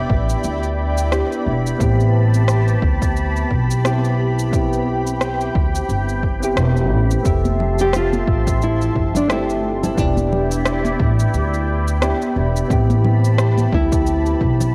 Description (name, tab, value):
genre	sunset chillout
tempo	88 BPM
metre	4/4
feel	swing 57% on 16ths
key	A minor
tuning	A4 = 439 Hz
part	soft electric-piano-like synth keys	accompaniment	0.0-14.7 s	A3 to E5	-26 LUFS	equal	chorus, phaser, low-pass filter, delay
part	lush unison pad	sustained chords	0.0-14.7 s	F3 to C6	-29 LUFS	equal	chorus, phaser
part	upright bass	bass	0.1-14.7 s	E1 to D2	-21 LUFS	equal	transformer saturation
part	electronic kick drum	drums	0.1-14.6 s	none	-23 LUFS	equal	overdrive
part	electronic cabasa and rim click	drums	0.3-14.7 s	none	-29 LUFS	equal	overdrive
part	congas	percussion	7.5-14.7 s	none	-28 LUFS	equal	none
part	nylon-string guitar	melody	7.8-14.7 s	D4 to G4	-24 LUFS	equal	delay
room	light reverb, small room ambience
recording	worn, warbling old tape, cassette tape, warbly pitch drift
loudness	-18 LUFS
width	mono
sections	0.0-14.7 A section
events	none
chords	0.0 Em7; 1.8 Am9; 7.3 Fmaj7; 10.0 Em7; 12.7 Am9